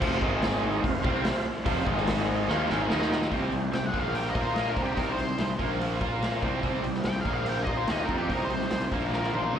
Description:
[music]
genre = blues rock power trio and southern rock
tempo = 145 BPM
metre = 4/4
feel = straight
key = C minor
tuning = A4 = 440 Hz
[part]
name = tonewheel organ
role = sustained chords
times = 0.0-9.6 s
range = F3 to F5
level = -36 LUFS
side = right 2 dB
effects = slow rotary speaker, overdrive, plate reverb
[part]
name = cranked stack guitar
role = riff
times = 0.0-9.6 s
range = F2 to Bb4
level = -29 LUFS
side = equal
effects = overdrive, slapback echo
[part]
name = fuzz fingered electric bass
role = bass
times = 0.0-9.6 s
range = F1 to Bb2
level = -32 LUFS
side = equal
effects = overdrive
[part]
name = raw garage drum kit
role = drums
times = 0.0-9.6 s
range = crash cymbal, hi-hat, kick drum, snare drum, toms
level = -31 LUFS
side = equal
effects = none
[part]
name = octave-fuzz lead guitar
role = melody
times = 3.7-9.6 s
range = G4 to G5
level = -33 LUFS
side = left 1 dB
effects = wah, distortion, plate reverb, slapback echo
[part]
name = bluesy overdriven lead guitar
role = second line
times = 3.7-9.6 s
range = Bb3 to C5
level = -39 LUFS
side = right 3 dB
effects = distortion, plate reverb, slapback echo
[sound]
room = moderate club reverb, RT60 0.5 s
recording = live gig heard through the venue's PA, recital hall reverb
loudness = -25 LUFS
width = side -8 dB against mid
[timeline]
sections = 0.0-3.3 A section; 3.3-9.6 B section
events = drum fill 2.5-3.3, 9.1-9.6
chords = 0.2 Ab5; 0.8 F5; 1.9 Ab5; 2.5 F5; 2.9 Eb5; 3.3 Cm; 3.9 Bb5; 4.8 Cm; 5.6 Bb5; 6.4 Cm; 7.3 Bb5; 7.7 Cm; 8.9 Bb5

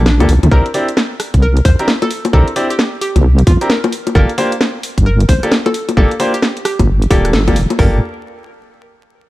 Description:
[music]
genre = UK garage, two-step garage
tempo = 132 BPM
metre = 4/4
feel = swing 63% on 16ths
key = G dorian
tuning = A4 = 440 Hz
[part]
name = deep soft wobble bass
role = bass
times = 0.0-8.0 s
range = D1 to E2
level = -11 LUFS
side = equal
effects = chorus, tube saturation, sidechain pumping
[part]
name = hollow square pluck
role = melody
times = 0.1-8.0 s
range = D4 to C5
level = -22 LUFS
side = equal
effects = chorus, tape echo
[part]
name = garage drum kit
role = drums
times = 0.1-7.8 s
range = bongos, hi-hat, rim click, snare drum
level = -17 LUFS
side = left 1 dB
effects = studio reverb
[part]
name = clear baby grand piano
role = stabs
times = 0.2-8.0 s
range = Bb3 to D5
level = -18 LUFS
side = equal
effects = dub echo
[part]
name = garage drum kit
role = drums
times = 0.5-7.9 s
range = hi-hat, kick drum, toms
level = -12 LUFS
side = equal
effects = studio reverb
[sound]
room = digital ambience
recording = vinyl crackle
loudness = -11 LUFS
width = side -17 dB against mid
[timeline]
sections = 0.0-7.8 A section; 7.8-9.3 B section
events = drop 0.0-7.8; band accent 7.3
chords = 0.0 Gm9; 0.5 Cadd9; 3.9 Gm9

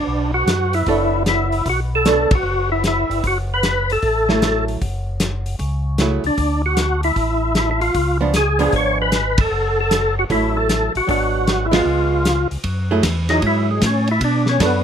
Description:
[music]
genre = soul jazz organ trio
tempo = 153 BPM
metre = 4/4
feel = swing 66% on 8ths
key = F# minor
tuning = A4 = 441 Hz
[part]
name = percussive tonewheel organ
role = melody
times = 0.0-14.8 s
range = G#3 to C#5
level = -18 LUFS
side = equal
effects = slow rotary speaker, overdrive, chorus vibrato
[part]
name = tonewheel organ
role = bass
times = 0.1-14.8 s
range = F#1 to B2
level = -21 LUFS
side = equal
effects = overdrive, slow rotary speaker
[part]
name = warm soul drum kit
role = drums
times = 0.5-14.7 s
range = hi-hat, kick drum, ride cymbal, snare drum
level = -22 LUFS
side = left 1 dB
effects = none
[part]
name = archtop guitar, miked and amplified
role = accompaniment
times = 0.9-14.8 s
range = E#3 to C#5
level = -21 LUFS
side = right 4 dB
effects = none
[sound]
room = light reverb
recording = none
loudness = -16 LUFS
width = side -8 dB against mid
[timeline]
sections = 0.0-12.6 A section; 12.6-14.8 B section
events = band accent 2.2, 9.3, 11.7; tonewheel organ solo 12.6-14.8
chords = 0.1 Bm9; 3.2 F#m7; 6.4 D; 7.9 C#7b9; 9.5 F#m7; 11.1 G#m7b5; 11.9 C#7; 12.6 F#m9; 14.2 Bm9

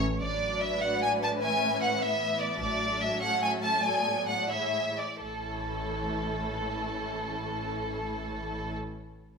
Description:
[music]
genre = quick classical-period movement for string orchestra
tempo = 83-101 BPM (dotted quarters)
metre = 6/8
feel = straight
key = A major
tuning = A4 = 437 Hz
[part]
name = rich chamber violin section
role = melody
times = 0.2-8.8 s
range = A4 to A5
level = -30 LUFS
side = equal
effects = none
[part]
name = dark studio violin section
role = second line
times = 0.2-8.8 s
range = E4 to E5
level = -34 LUFS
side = equal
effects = none
[part]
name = warm studio viola section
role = accompaniment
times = 0.2-8.8 s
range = E3 to E4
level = -39 LUFS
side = equal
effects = none
[part]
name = rich chamber double bass section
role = bass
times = 0.2-0.6, 2.6-3.0, 5.2-8.8 s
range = A1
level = -37 LUFS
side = right 1 dB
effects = none
[part]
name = warm chamber cello section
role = bass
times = 0.2-8.8 s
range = A2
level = -38 LUFS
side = equal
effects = none
[sound]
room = wet stone room reverb, RT60 1.1 s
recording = minimal, uncompressed stereo recording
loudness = -27 LUFS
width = side -5 dB against mid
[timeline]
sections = 0.2-5.2 A section; 5.2-8.0 B section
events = slowing down 2.0-5.2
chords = 0.2 D/A; 1.4 E/A; 2.6 D/A; 3.8 E7/A; 5.2 A

